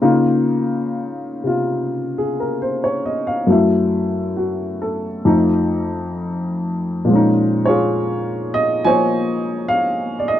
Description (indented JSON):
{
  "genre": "solo jazz",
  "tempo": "64-71 BPM",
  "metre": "4/4",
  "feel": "swing 67% on 8ths, rubato",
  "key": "Bb minor from 7.1 s",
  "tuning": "A4 = 444 Hz",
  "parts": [
    { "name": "warm upright piano", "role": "solo", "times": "0.0-10.4 s", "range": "F2 to Ab5", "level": "-16 LUFS", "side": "left 1 dB", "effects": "none" }
  ],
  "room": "little or no reverb",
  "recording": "dry, close 1970s-style studio recording",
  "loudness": "-16 LUFS",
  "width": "side -11 dB against mid",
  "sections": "0.0-7.1 A section; 7.1-10.4 B section",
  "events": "none",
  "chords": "0.0 Db69; 3.5 Gbm7; 5.3 F7; 7.1 Bbm11"
}